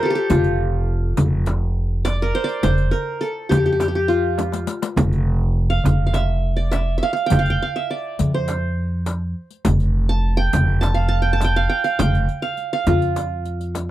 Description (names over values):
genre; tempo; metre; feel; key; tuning
Arabic maqam ensemble; 103 BPM; 4/4; straight; F maqam ajam; A4 = 440 Hz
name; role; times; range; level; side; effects
qanun; melody; 0.0-13.9 s; F4 to A5; -22 LUFS; right 1 dB; none
riq; percussion; 0.2-13.9 s; none; -29 LUFS; left 9 dB; none
upright bass; bass; 0.3-13.9 s; F1 to F2; -20 LUFS; equal; none
darbuka; percussion; 0.3-13.9 s; none; -24 LUFS; left 2 dB; none
frame drum; percussion; 0.3-13.9 s; none; -24 LUFS; right 2 dB; none
room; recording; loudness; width
little or no reverb; dry, close 1970s-style studio recording; -18 LUFS; side -14 dB against mid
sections
0.0-13.9 A section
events
drum fill 4.4-5.0, 13.7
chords
none